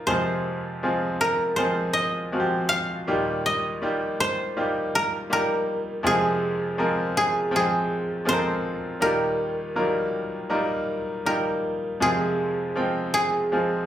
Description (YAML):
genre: pop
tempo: 80 BPM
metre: 4/4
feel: straight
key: F minor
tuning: A4 = 440 Hz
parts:
  - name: koto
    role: melody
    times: 0.0-13.9 s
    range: Ab4 to F5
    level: -25 LUFS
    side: equal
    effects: none
  - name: bright grand piano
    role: accompaniment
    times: 0.0-13.9 s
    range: Eb2 to G5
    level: -25 LUFS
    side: equal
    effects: none
room: wet large studio reverb, RT60 0.7 s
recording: band playing live in one room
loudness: -22 LUFS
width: side -11 dB against mid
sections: 0.1-13.9 A section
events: none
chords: 0.1 Fm; 3.1 Ebadd9; 6.0 Fm; 9.0 Ebadd9; 12.0 Fm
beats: | 0.07 0.82 1.57 2.32 | 3.07 3.82 4.57 5.31 | 6.05 6.78 7.52 8.26 | 9.00 9.75 10.50 11.26 | 12.01 12.77 13.52